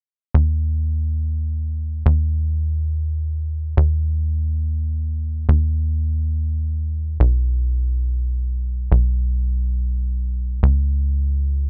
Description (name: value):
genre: trance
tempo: free time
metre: none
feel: none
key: unclear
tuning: A4 = 440 Hz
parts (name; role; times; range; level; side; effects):
- tight sequencer bass; bass; 0.3-11.7 s; Cb2 to Eb2; -21 LUFS; equal; none
room: little or no reverb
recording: none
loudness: -21 LUFS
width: mono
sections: 0.3-11.7 A section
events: none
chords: none